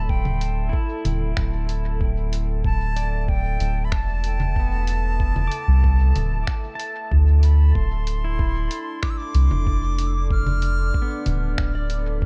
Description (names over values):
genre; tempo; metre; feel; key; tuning
ambient dub; 94 BPM; 4/4; straight; unclear; A4 = 440 Hz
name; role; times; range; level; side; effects
bright reedy silver concert flute; melody; 0.0-11.5 s; G5 to F6; -34 LUFS; equal; dub echo
deep dark ambient pad; sustained chords; 0.0-12.3 s; D4 to E5; -38 LUFS; equal; chorus, built-in reverb
soft dub sub bass; bass; 0.0-12.3 s; D1 to D2; -22 LUFS; equal; none
electronic kick drum; drums; 0.1-12.3 s; none; -26 LUFS; equal; small room reverb
lo-fi sampler-style drum kit; drums; 0.3-12.0 s; congas, finger snaps, hi-hat; -33 LUFS; equal; small room reverb, dub echo
pedal steel guitar; arpeggios; 0.7-12.3 s; B3 to D6; -38 LUFS; equal; dub echo
room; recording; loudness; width
little or no reverb; dark, warm production; -22 LUFS; mono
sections
0.0-12.3 A section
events
none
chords
0.0 A5/D; 7.8 Dm7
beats
| 0.09 0.73 1.37 2.01 | 2.65 3.29 3.92 4.56 | 5.20 5.84 6.48 7.12 | 7.75 8.39 9.03 9.67 | 10.31 10.95 11.58 12.22